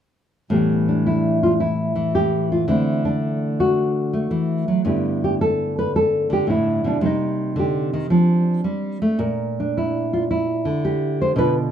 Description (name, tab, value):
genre	solo jazz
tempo	110 BPM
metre	4/4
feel	swing 68% on 8ths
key	A minor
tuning	A4 = 440 Hz
part	nylon-string guitar	solo	0.5-11.7 s	G2 to C5	-18 LUFS	equal	none
room	moderate club reverb, RT60 0.6 s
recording	dark, warm production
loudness	-18 LUFS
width	side -9 dB against mid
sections	0.5-11.7 A section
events	none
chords	0.5 A9sus4; 2.7 D9; 4.8 G6; 7.0 Cm9; 8.1 F69; 9.2 Bb6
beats	| 0.50 1.04 1.58 2.13 | 2.67 3.21 3.75 4.30 | 4.84 5.38 5.93 6.47 | 7.01 7.56 8.10 8.64 | 9.19 9.73 10.27 10.82 | 11.36